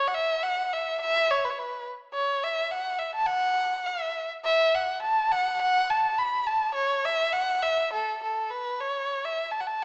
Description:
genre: chinese traditional.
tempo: 104 BPM.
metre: 2/4.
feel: straight.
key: A gong mode.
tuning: A4 = 438 Hz.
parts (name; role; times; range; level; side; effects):
rich erhu; solo; 0.0-9.8 s; A4 to B5; -27 LUFS; equal; none.
room: moderate recital hall reverb, RT60 1.4 s.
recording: recorded in a church or concert hall, small speaker sound.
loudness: -27 LUFS.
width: mono.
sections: 0.0-9.1 A section.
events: none.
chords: none.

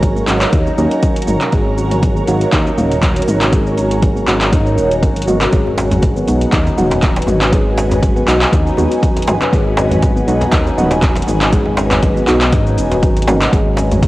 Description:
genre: afro house.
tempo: 120 BPM.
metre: 4/4.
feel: swing 55% on 16ths.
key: G# minor.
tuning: A4 = 440 Hz.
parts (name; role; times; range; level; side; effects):
ethereal airy pad; sustained chords; 0.0-14.1 s; F#4 to A#5; -20 LUFS; equal; ensemble chorus, built-in reverb, phaser, sidechain pumping.
handpan; arpeggios; 0.0-14.1 s; F#3 to D#4; -20 LUFS; left 1 dB; sidechain pumping, analog delay.
deep mellow chord stab; stabs; 0.0-14.1 s; F#3 to F#4; -20 LUFS; right 1 dB; chorus, sidechain pumping, analog delay.
smooth synth bass; bass; 0.0-14.1 s; D#1 to G#2; -18 LUFS; equal; sidechain pumping.
deep house drum kit; drums; 0.0-14.1 s; handclaps, hi-hat, shaker, toms; -20 LUFS; equal; overdrive, studio reverb, cassette tape.
electronic kick drum; drums; 0.0-14.1 s; none; -16 LUFS; equal; overdrive, studio reverb, cassette tape.
djembe; percussion; 5.7-14.1 s; none; -21 LUFS; right 1 dB; none.
room: light reverb, digital ambience.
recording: home recording on cassette.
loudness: -11 LUFS.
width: side -17 dB against mid.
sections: 0.0-14.1 A section.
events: none.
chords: 0.0 G#m7.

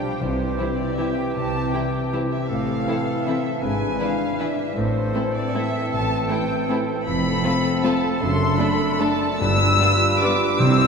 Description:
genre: classical.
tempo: 156 BPM.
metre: 3/4.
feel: uneven beats, rubato.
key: C major.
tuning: A4 = 439 Hz.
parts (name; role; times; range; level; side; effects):
muted chamber violin section; melody; 0.0-10.9 s; C5 to E6; -27 LUFS; left 1 dB; none.
bright large flute ensemble; second line; 0.0-10.9 s; C5 to E6; -29 LUFS; left 2 dB; none.
dark clarinet; second line; 0.0-10.9 s; C4 to F4; -28 LUFS; left 2 dB; none.
warm oboe; second line; 0.0-10.9 s; G4 to C5; -31 LUFS; right 1 dB; none.
warm bassoon; accompaniment; 0.0-10.9 s; E3 to A3; -29 LUFS; right 4 dB; none.
concert harp; arpeggios; 0.0-10.9 s; F2 to F5; -29 LUFS; left 6 dB; none.
muted chamber cello section; bass; 0.2-10.9 s; F2 to C3; -29 LUFS; right 2 dB; none.
muted chamber double bass section; bass; 0.2-10.9 s; F1 to C2; -28 LUFS; right 3 dB; none.
timpani; percussion; 0.2-0.7, 9.4-10.9 s; G2 to C3; -27 LUFS; equal; none.
muted chamber violin section; second line; 0.6-10.3 s; D4 to B4; -34 LUFS; left 2 dB; none.
muted chamber viola section; accompaniment; 0.6-10.3 s; E3 to D4; -31 LUFS; right 1 dB; none.
warm French horn section; sustained chords; 0.6-10.4 s; E3 to F4; -32 LUFS; left 2 dB; none.
room: wet church reverb, RT60 3.6 s.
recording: none.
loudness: -19 LUFS.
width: side -5 dB against mid.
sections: 0.0-10.9 A section.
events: none.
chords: 0.2 C; 2.5 Am; 3.6 E7/G#; 4.8 Am; 7.1 F; 8.2 D7/F#; 9.4 G7.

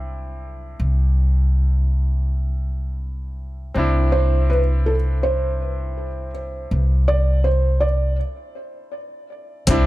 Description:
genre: trip hop.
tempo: 81 BPM.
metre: 4/4.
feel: swing 58% on 16ths.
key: unclear.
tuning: A4 = 443 Hz.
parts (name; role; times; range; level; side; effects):
bright upright piano; accompaniment; 0.0-9.9 s; C4 to E4; -27 LUFS; equal; harmonic tremolo, vintage 12-bit sampler grit.
upright bass; bass; 0.0-9.9 s; C2; -19 LUFS; equal; none.
felt-muted upright piano; melody; 4.1-8.2 s; A4 to D5; -24 LUFS; right 2 dB; tape echo.
boom bap sampler-style drum kit; drums; 9.7-9.9 s; hi-hat, kick drum; -18 LUFS; equal; overdrive.
room: studio ambience.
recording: none.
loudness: -18 LUFS.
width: side -17 dB against mid.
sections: 0.0-9.7 A section.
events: break 8.2-9.7.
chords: 0.0 Cadd9.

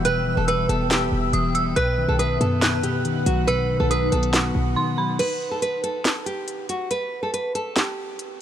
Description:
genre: hip hop, trap.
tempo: 140 BPM.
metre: 4/4.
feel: half-time.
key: unclear.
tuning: A4 = 440 Hz.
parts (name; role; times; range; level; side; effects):
nylon-string guitar; melody; 0.0-8.4 s; F#4 to B4; -25 LUFS; right 2 dB; none.
mellow electric guitar; accompaniment; 0.0-5.2 s; B2 to B4; -25 LUFS; left 2 dB; none.
ethereal airy pad; sustained chords; 0.0-5.2 s; D#4 to E6; -31 LUFS; left 2 dB; ensemble chorus, built-in reverb, phaser.
short 808-style bass; bass; 0.0-4.8 s; E1 to F#2; -26 LUFS; equal; none.
trap drum kit; drums; 0.0-8.3 s; crash cymbal, handclaps, hi-hat, snare drum; -26 LUFS; equal; none.
dark detuned synth bell; second line; 0.1-5.2 s; B5 to F#6; -28 LUFS; right 3 dB; chorus.
room: light reverb.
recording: none.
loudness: -20 LUFS.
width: side -10 dB against mid.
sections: 0.0-5.2 A section; 5.2-8.4 B section.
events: drums muted 4.8-5.2; break 5.2-8.4.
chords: 0.0 Em; 1.8 B; 5.2 N.C..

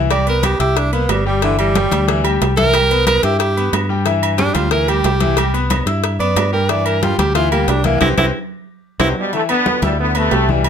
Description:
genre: latin, salsa.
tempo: 182 BPM.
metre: 4/4.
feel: straight.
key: G major.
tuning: A4 = 440 Hz.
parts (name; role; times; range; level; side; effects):
bright concert grand piano; accompaniment; 0.0-10.7 s; E3 to E6; -20 LUFS; left 5 dB; none.
fingered electric bass; bass; 0.0-10.7 s; G1 to G2; -18 LUFS; equal; none.
breathy tenor saxophone; melody; 0.1-9.1 s; D3 to D5; -18 LUFS; right 4 dB; slapback echo.
agogo bells and timbales; percussion; 0.1-10.7 s; none; -24 LUFS; right 8 dB; none.
claves; percussion; 0.1-10.7 s; none; -30 LUFS; left 6 dB; none.
congas; percussion; 0.1-10.7 s; none; -24 LUFS; left 2 dB; none.
cowbell; percussion; 0.1-9.1 s; none; -24 LUFS; left 11 dB; none.
brilliant trombone section; melody; 9.0-10.7 s; B2 to B3; -18 LUFS; equal; none.
room: light reverb.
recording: close, detailed microphones.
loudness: -13 LUFS.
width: side -8 dB against mid.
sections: 0.0-9.3 A section; 9.3-10.7 B section.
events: tenor saxophone solo 0.0-9.3; band accent 8.0-9.3; drum fill 8.8-9.3.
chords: 0.1 Cmaj7; 1.4 G5; 2.7 Cmaj7; 4.1 G5; 5.4 Cmaj7; 6.7 G5; 8.0 Cmaj7(no3); 9.3 G6.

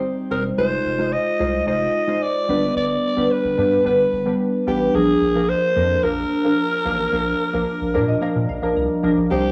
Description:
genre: 1980s-style pop.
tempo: 110 BPM.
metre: 4/4.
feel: straight.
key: unclear.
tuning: A4 = 440 Hz.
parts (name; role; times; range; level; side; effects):
breathy alto saxophone; melody; 0.0-9.5 s; G4 to Eb5; -24 LUFS; equal; cassette tape, tape echo.
glassy digital keys; accompaniment; 0.0-9.5 s; F3 to Bb5; -22 LUFS; equal; chorus.
round analog bass; bass; 0.3-9.5 s; E1 to Bb2; -29 LUFS; equal; none.
room: moderate booth ambience, RT60 0.2 s.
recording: home recording on cassette, small room reverb.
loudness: -20 LUFS.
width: mono.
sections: 0.0-9.3 A section.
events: synth keys fill 7.7-9.3.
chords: 0.0 Cm; 0.6 Fm7; 2.5 G; 4.9 Bb.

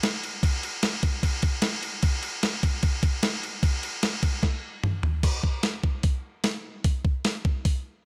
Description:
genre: rock.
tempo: 150 BPM.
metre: 4/4.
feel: straight.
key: none.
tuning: none.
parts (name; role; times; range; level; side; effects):
crisp 8-bit digital drum machine; drums; 0.0-7.7 s; crash cymbal, hi-hat, kick drum, snare drum, toms; -26 LUFS; equal; none.
room: light reverb.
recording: none.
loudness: -27 LUFS.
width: mono.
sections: 0.0-5.2 A section; 5.2-8.1 B section.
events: drum fill 4.4-5.2.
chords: none.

